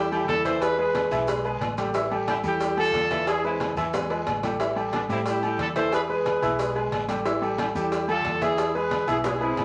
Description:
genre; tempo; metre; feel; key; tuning
latin, salsa; 181 BPM; 4/4; straight; A minor; A4 = 440 Hz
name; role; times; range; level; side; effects
mellow horn section; melody; 0.0-9.6 s; B3 to C5; -28 LUFS; equal; none
clear grand piano; accompaniment; 0.0-9.6 s; E3 to E5; -30 LUFS; equal; none
hollow-body short-scale fingered electric bass; bass; 0.0-9.6 s; A1 to A2; -38 LUFS; equal; none
agogo bells and timbales; percussion; 0.1-9.6 s; none; -35 LUFS; equal; none
congas; percussion; 0.1-9.6 s; none; -40 LUFS; equal; none
maracas; percussion; 0.1-9.6 s; none; -53 LUFS; equal; none
cowbell and bongos; percussion; 0.3-9.6 s; none; -34 LUFS; equal; none
guiro; percussion; 0.3-9.6 s; none; -48 LUFS; equal; none
bright trombone section; melody; 9.4-9.6 s; C4 to E4; -29 LUFS; equal; none
room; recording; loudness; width
wet studio reverb, RT60 0.7 s; none; -25 LUFS; mono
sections
0.0-9.6 A section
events
drum fill 3.9-4.6, 9.2-9.6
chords
0.0 Am7; 0.6 E; 1.9 A5; 3.3 E; 4.6 A7(no3); 5.9 E; 7.3 A5; 8.6 E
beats
0.28 | 0.61 0.95 1.28 1.61 | 1.94 2.27 2.61 2.94 | 3.27 3.60 3.93 4.27 | 4.60 4.93 5.26 5.59 | 5.92 6.26 6.59 6.92 | 7.25 7.58 7.92 8.25 | 8.58 8.91 9.24 9.58

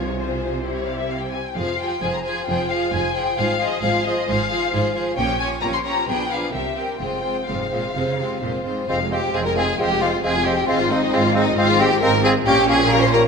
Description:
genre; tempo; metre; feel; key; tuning
quick classical-period movement for symphony orchestra; 133 BPM; 4/4; straight; F minor; A4 = 440 Hz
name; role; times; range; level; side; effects
warm symphonic violin section; melody; 0.0-13.3 s; C5 to C6; -25 LUFS; left 5 dB; none
rich chamber violin section; second line; 0.0-13.2 s; Eb4 to Db5; -22 LUFS; left 2 dB; none
rich studio viola section; accompaniment; 0.0-13.3 s; F3 to F4; -27 LUFS; right 2 dB; none
rich studio double bass section; bass; 0.0-13.3 s; F1 to C2; -29 LUFS; right 5 dB; none
warm studio cello section; bass; 0.0-13.3 s; F2 to Db3; -28 LUFS; right 2 dB; none
bright clarinet; second line; 8.9-13.2 s; Bb3 to C4; -28 LUFS; left 2 dB; none
dark cor anglais; second line; 8.9-13.2 s; C5 to Db5; -28 LUFS; right 3 dB; none
silver concert flute; second line; 8.9-13.2 s; F5; -30 LUFS; left 2 dB; none
warm bassoon; accompaniment; 8.9-13.2 s; G3 to Ab3; -27 LUFS; right 2 dB; none
dark French horn section; sustained chords; 8.9-13.3 s; Ab3 to Db4; -26 LUFS; equal; none
room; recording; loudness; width
moderate concert hall reverb, RT60 1.8 s; none; -18 LUFS; side -5 dB against mid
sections
0.0-8.9 A section; 8.9-13.3 B section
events
none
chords
0.0 Fm/C; 0.6 C; 1.6 Fm; 3.4 Fm/Ab; 5.2 Gm7b5/Bb; 6.1 Bdim7; 6.5 C7; 7.0 Fm; 10.7 Fm/Ab; 12.5 Gm7b5/Bb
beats
0.18 0.63 1.09 | 1.56 2.02 2.47 2.93 | 3.38 3.83 4.28 4.73 | 5.18 5.62 6.08 6.53 | 7.00 7.48 7.96 8.42 | 8.89 9.34 9.79 10.24 | 10.69 11.13 11.58 12.02 | 12.47 12.92

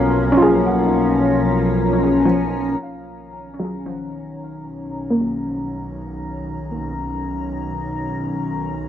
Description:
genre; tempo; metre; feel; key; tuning
ambient; free time; none; none; B lydian; A4 = 440 Hz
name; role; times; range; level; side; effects
felt-muted upright piano; melody; 0.0-2.2 s; E#5; -30 LUFS; right 2 dB; analog delay
evolving wavetable pad; sustained chords; 0.0-8.9 s; D#3 to A#5; -21 LUFS; left 2 dB; chorus, built-in reverb, cassette tape
soft round pluck; arpeggios; 0.0-7.4 s; E#3 to G#4; -20 LUFS; equal; lush chorus, cassette tape, analog delay
clear chamber double bass section; bass; 0.0-8.9 s; B1; -25 LUFS; right 1 dB; none
room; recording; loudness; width
wet booth ambience, RT60 0.2 s; home recording on cassette; -18 LUFS; side -10 dB against mid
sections
0.0-2.8 A section; 2.8-8.9 B section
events
fade-in on ambient pad 2.8-8.9; fade-in on double bass section 2.8-8.9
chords
0.0 A#m/B; 2.8 Bmaj9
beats
free time

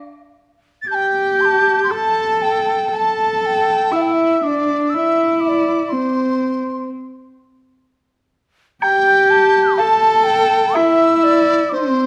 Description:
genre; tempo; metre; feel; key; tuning
chinese traditional, Chinese chamber ensemble; 61 BPM; 4/4; rubato; unclear; A4 = 440 Hz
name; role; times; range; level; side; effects
mellow hollow dizi; second line; 0.8-12.1 s; A5 to A6; -22 LUFS; equal; none
mellow large dizi; melody; 0.9-12.1 s; C5 to C6; -20 LUFS; equal; none
warm cello; second line; 0.9-12.1 s; C4 to A4; -20 LUFS; equal; none
woodblock; percussion; 8.8-11.0 s; none; -31 LUFS; equal; none
room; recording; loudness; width
moderate recital hall reverb, RT60 1.6 s; none; -16 LUFS; mono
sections
0.9-12.1 A section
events
none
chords
none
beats
| 0.89 1.90 2.92 3.92 | 4.91 5.90 6.88 7.85 | 8.82 9.78 10.75 11.73

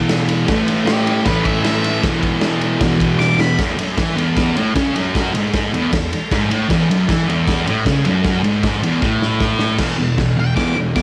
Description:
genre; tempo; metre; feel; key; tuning
garage rock duo or trio; 155 BPM; 4/4; straight; E major; A4 = 440 Hz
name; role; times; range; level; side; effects
thick fuzz guitar; riff; 0.0-11.0 s; E2 to A3; -19 LUFS; equal; distortion, cassette tape
raw garage drum kit; drums; 0.1-11.0 s; crash cymbal, kick drum, ride cymbal, snare drum; -22 LUFS; equal; cassette tape
octave-fuzz lead guitar; melody; 0.9-3.6, 10.4-11.0 s; G4 to D6; -24 LUFS; equal; distortion
room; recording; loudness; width
light reverb; home recording on cassette; -17 LUFS; mono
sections
0.0-3.6 A section; 3.6-9.8 B section; 9.8-11.0 C section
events
drum fill 3.2-3.6, 9.0-9.8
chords
0.5 A5; 2.0 E5; 3.6 E; 9.8 E5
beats
0.11 | 0.49 0.88 1.27 1.66 | 2.04 2.43 2.82 3.21 | 3.59 3.98 4.37 4.76 | 5.14 5.53 5.92 6.31 | 6.70 7.08 7.47 7.86 | 8.25 8.63 9.02 9.41 | 9.80 10.19 10.57 10.96

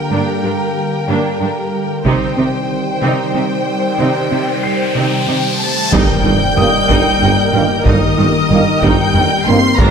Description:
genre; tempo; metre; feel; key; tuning
cinematic, hybrid orchestral and electronic film score; 62 BPM (dotted quarters); 6/8; straight; unclear; A4 = 440 Hz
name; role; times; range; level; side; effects
rich symphonic violin section; second line; 0.0-9.9 s; Bb4 to C6; -20 LUFS; left 2 dB; none
dark trombone section; sustained chords; 0.0-9.6 s; D3 to Bb3; -22 LUFS; right 3 dB; none
ethereal airy pad; sustained chords; 0.0-9.9 s; D3 to Eb5; -22 LUFS; equal; ensemble chorus, built-in reverb
clear baby grand piano; texture; 0.0-9.8 s; Eb5 to C7; -29 LUFS; equal; none
rich symphonic viola section; accompaniment; 0.1-9.9 s; Bb3 to Bb4; -22 LUFS; right 3 dB; none
harp-like synth pluck; arpeggios; 0.1-9.9 s; C3 to G4; -22 LUFS; left 1 dB; chorus, ping-pong delay
clear symphonic cello section; bass; 0.1-9.9 s; G2 to C3; -20 LUFS; right 3 dB; none
riser and impact; sound effects; 3.8-7.9 s; none; -22 LUFS; equal; none
taiko ensemble; drums; 2.1-9.9 s; none; -19 LUFS; equal; none
clear symphonic violin section; melody; 5.6-9.9 s; Eb6 to C7; -20 LUFS; left 2 dB; none
mellow French horn section; sustained chords; 5.6-9.9 s; Eb3 to C4; -20 LUFS; left 4 dB; none
mellow tuba; bass; 5.9-9.9 s; G1; -21 LUFS; right 5 dB; none
rich symphonic double bass section; bass; 5.9-9.9 s; G1; -20 LUFS; right 4 dB; none
room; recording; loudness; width
wet scoring stage reverb, RT60 1.7 s; none; -12 LUFS; side -6 dB against mid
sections
0.0-5.9 A section; 5.9-9.9 B section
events
riser 3.8-5.9; impact 5.9-7.9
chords
0.0 Gm; 2.1 Cm; 5.9 Eb/G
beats
| 0.12 1.08 | 2.05 3.02 | 3.99 4.95 | 5.92 6.89 | 7.86 8.82 | 9.79

